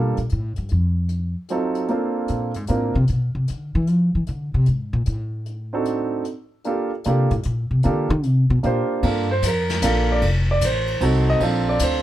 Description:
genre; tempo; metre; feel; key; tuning
jazz piano trio; 151 BPM; 3/4; swing 67% on 8ths; G minor; A4 = 440 Hz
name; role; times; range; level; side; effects
warm grand piano; melody; 0.0-2.9, 5.7-12.0 s; Gb3 to Eb5; -22 LUFS; right 2 dB; none
upright bass; bass; 0.0-12.0 s; F1 to F3; -20 LUFS; left 1 dB; none
jazz brush drum kit; drums; 0.2-11.9 s; hi-hat, kick drum, ride cymbal, snare drum; -29 LUFS; left 2 dB; none
room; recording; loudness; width
little or no reverb; dark, warm production; -19 LUFS; side -13 dB against mid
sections
0.0-9.0 A section; 9.0-12.0 A section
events
upright bass solo 0.0-9.0; grand piano solo 9.0-12.0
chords
0.0 Gm9; 0.7 F7b9; 1.9 Bbmaj9; 3.1 Bmadd11; 4.3 Csus2; 5.5 D7b9; 6.7 Gm9; 10.2 F7b9; 11.4 Bbmaj9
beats
0.32 | 0.71 1.11 1.50 | 1.90 2.29 2.69 | 3.09 3.48 3.88 | 4.28 4.67 5.07 | 5.46 5.86 6.26 | 6.65 7.05 7.45 | 7.84 8.24 8.64 | 9.03 9.43 9.83 | 10.22 10.62 11.01 | 11.41 11.81

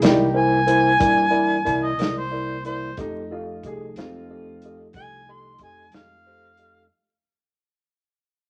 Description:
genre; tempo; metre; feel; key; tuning
slow blues; 61 BPM (dotted quarters); 12/8; straight; F mixolydian; A4 = 438 Hz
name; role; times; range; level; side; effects
warm upright piano; second line; 0.0-4.8 s; C4 to Ab4; -33 LUFS; equal; none
barky tine electric piano; accompaniment; 0.0-6.8 s; E4 to F5; -26 LUFS; equal; none
mellow tonewheel organ; sustained chords; 0.0-6.9 s; E3 to Eb4; -42 LUFS; equal; slow rotary speaker
fingered electric bass; bass; 0.0-6.9 s; C2 to G2; -32 LUFS; equal; none
natural country drum kit; drums; 0.0-6.7 s; hi-hat, kick drum, snare drum; -24 LUFS; equal; none
warm harmonica; melody; 0.4-6.9 s; C5 to C6; -23 LUFS; equal; overdrive
room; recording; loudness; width
moderate large studio reverb, RT60 0.9 s; vinyl crackle; -20 LUFS; mono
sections
0.0-6.9 A section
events
fade-out 0.0-6.9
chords
0.0 C7; 3.0 F7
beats
0.01 0.99 1.98 | 2.96 3.94 4.93 5.91

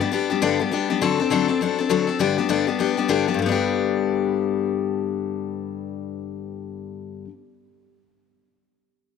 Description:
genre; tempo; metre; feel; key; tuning
rock; 202 BPM; 4/4; swing 61% on 8ths; G major; A4 = 440 Hz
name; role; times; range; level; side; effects
picked steel-string acoustic guitar; solo; 0.0-7.3 s; G2 to A4; -21 LUFS; left 8 dB; none
room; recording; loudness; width
light reverb, studio reverb; none; -20 LUFS; side -5 dB against mid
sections
0.0-1.0 A section; 1.0-3.4 B section; 3.4-5.8 C section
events
none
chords
0.0 G; 1.0 D7; 2.2 G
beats
0.12 0.42 0.72 | 1.01 1.31 1.61 1.90 | 2.20 2.50 2.80 3.09 | 3.39 3.69 3.98 4.28 | 4.58 4.88 5.17 5.47

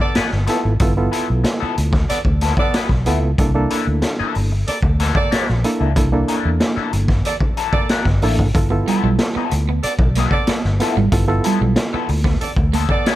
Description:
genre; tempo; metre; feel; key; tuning
funk; 93 BPM; 4/4; straight; G mixolydian; A4 = 439 Hz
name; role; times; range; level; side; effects
warm horn section; second line; 0.0-13.2 s; Bb3 to D5; -24 LUFS; right 2 dB; none
electric guitar at the edge of break-up; accompaniment; 0.0-13.2 s; F3 to B4; -26 LUFS; left 8 dB; wah
raw garage drum kit; drums; 0.1-13.2 s; hi-hat, kick drum, snare drum; -20 LUFS; equal; none
vintage muted fingered electric bass; bass; 0.2-12.8 s; G1 to E2; -18 LUFS; equal; none
barky reed electric piano; stabs; 0.5-12.3 s; Bb3 to A4; -22 LUFS; right 2 dB; overdrive, fast tremolo
electric guitar at the edge of break-up; riff; 8.7-13.2 s; G3 to B3; -23 LUFS; right 5 dB; none
room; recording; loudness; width
little or no reverb; dark, warm production; -15 LUFS; side -14 dB against mid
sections
0.0-13.2 A section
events
none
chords
0.0 G13; 3.4 C13 (rootless); 8.5 G13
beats
0.16 | 0.81 1.45 2.10 2.74 | 3.38 4.03 4.67 5.32 | 5.96 6.61 7.25 7.90 | 8.54 9.19 9.83 10.48 | 11.12 11.77 12.41 13.06

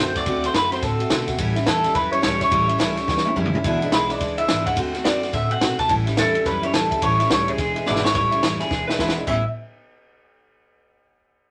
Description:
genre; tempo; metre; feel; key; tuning
rockabilly; 213 BPM; 4/4; swing 62% on 8ths; A mixolydian; A4 = 440 Hz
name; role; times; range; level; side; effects
electric guitar through a small old amp; melody; 0.0-9.4 s; G#4 to A5; -24 LUFS; equal; phaser
picked steel-string acoustic guitar; accompaniment; 0.0-9.4 s; E2 to F#4; -27 LUFS; equal; none
upright bass; bass; 0.0-9.4 s; E1 to B2; -31 LUFS; equal; none
compact cocktail drum kit; drums; 0.2-9.4 s; crash cymbal, kick drum, ride cymbal, snare drum, toms; -26 LUFS; equal; none
room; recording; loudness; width
moderate studio reverb, RT60 0.5 s; none; -21 LUFS; mono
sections
0.0-8.1 A section; 8.1-9.3 B section; 9.3-10.4 C section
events
drum fill 3.1-3.6, 7.9, 8.7-9.3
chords
0.0 D7; 1.4 A7; 3.6 E7; 4.8 D7; 5.9 A7; 7.6 E7; 8.1 A7; 8.7 E7; 9.3 A9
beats
| 0.26 0.54 0.83 1.11 | 1.39 1.67 1.95 2.23 | 2.52 2.80 3.08 3.36 | 3.64 3.92 4.21 4.49 | 4.77 5.05 5.33 5.61 | 5.89 6.18 6.46 6.74 | 7.02 7.30 7.58 7.86 | 8.15 8.43 8.71 8.99 | 9.27

